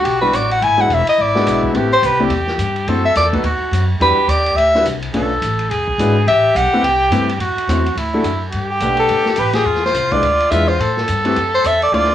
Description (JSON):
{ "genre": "jazz, small-group swing and bop", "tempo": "212 BPM", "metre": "4/4", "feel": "swing 60% on 8ths", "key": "E minor, G major from 8.5 s", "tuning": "A4 = 441 Hz", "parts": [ { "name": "bright soprano saxophone", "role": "melody", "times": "0.0-12.1 s", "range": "G4 to G#5", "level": "-14 LUFS", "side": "left 1 dB", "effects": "cassette tape" }, { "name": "clear trumpet", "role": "second line", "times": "0.0-12.1 s", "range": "E4 to A4", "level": "-20 LUFS", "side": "right 2 dB", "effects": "cassette tape" }, { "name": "upright bass", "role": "bass", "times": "0.0-12.1 s", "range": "E1 to A2", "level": "-21 LUFS", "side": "equal", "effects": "none" }, { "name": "vintage drum kit", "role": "drums", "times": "0.1-12.1 s", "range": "hi-hat, kick drum, ride cymbal, snare drum", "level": "-27 LUFS", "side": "equal", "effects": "cassette tape" }, { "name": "warm concert grand piano", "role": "accompaniment", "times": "0.2-12.1 s", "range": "G3 to F#5", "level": "-20 LUFS", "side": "left 2 dB", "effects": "cassette tape" } ], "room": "moderate studio reverb, RT60 0.6 s", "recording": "home recording on cassette, small room ambience", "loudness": "-13 LUFS", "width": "side -11 dB against mid", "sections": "0.0-8.5 A section; 8.5-12.1 B section", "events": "band accent 9.5", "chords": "0.0 Em9; 0.6 E7; 1.7 Am7; 2.9 F#m7b5; 3.4 D#m; 4.0 Em7; 5.1 Bm7b5; 5.7 E7; 6.3 Am7; 7.4 F#m7b5; 8.0 D; 8.5 Gmaj9; 9.7 E7b9; 10.8 Am7" }